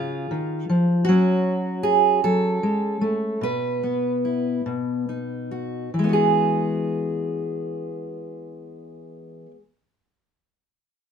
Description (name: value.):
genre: folk, solo fingerstyle acoustic guitar.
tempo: 46-52 BPM (dotted quarters).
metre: 6/8.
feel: straight.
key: E major.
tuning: A4 = 439 Hz.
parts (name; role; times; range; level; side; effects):
fingerpicked steel-string acoustic guitar; solo; 0.0-9.6 s; B2 to B4; -21 LUFS; equal; none.
room: moderate small room reverb, RT60 0.5 s.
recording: band playing live in one room.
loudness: -20 LUFS.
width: side -7 dB against mid.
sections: 0.0-5.9 A section; 5.9-8.6 B section.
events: slowing down 1.1-5.9.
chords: 0.0 C#; 1.1 F#madd9; 3.4 Bsus4; 4.7 B; 5.9 Eadd9.